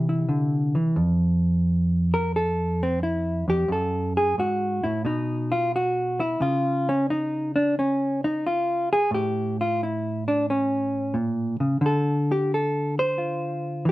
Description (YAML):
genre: solo jazz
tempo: 88 BPM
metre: 4/4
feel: swing 69% on 8ths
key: unclear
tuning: A4 = 436 Hz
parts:
  - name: hollow-body jazz guitar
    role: solo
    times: 0.0-13.9 s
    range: F2 to C5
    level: -22 LUFS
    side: equal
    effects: none
room: moderate studio reverb, RT60 0.7 s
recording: band playing live in one room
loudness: -22 LUFS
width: side -17 dB against mid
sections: 1.0-13.9 A section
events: hollow-body jazz guitar solo 1.0-13.9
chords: 0.0 C; 1.0 N.C.; 3.7 Gbm; 5.0 N.C.; 9.1 A; 11.8 Dm7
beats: 0.29 | 0.97 1.65 2.33 3.01 | 3.69 4.36 5.04 5.72 | 6.40 7.08 7.75 8.43 | 9.11 9.79 10.46 11.14 | 11.82 12.50 13.18 13.85